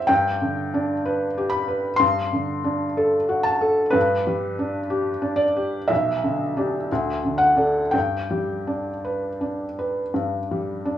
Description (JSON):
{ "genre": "classical, romantic nocturne for solo piano", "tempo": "54-64 BPM", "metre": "4/4", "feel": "rubato", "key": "G major", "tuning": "A4 = 440 Hz", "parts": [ { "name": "felt-muted upright piano", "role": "solo", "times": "0.0-11.0 s", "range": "B1 to C6", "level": "-20 LUFS", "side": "equal", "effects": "none" } ], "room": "moderate studio reverb, RT60 0.5 s", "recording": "worn, warbling old tape, cassette tape, warbly pitch drift, small room ambience", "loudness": "-20 LUFS", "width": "side -11 dB against mid", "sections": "0.0-11.0 A section", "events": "none", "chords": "0.1 G; 2.0 D7/G; 4.0 G; 5.9 G/B; 6.9 D; 7.9 G" }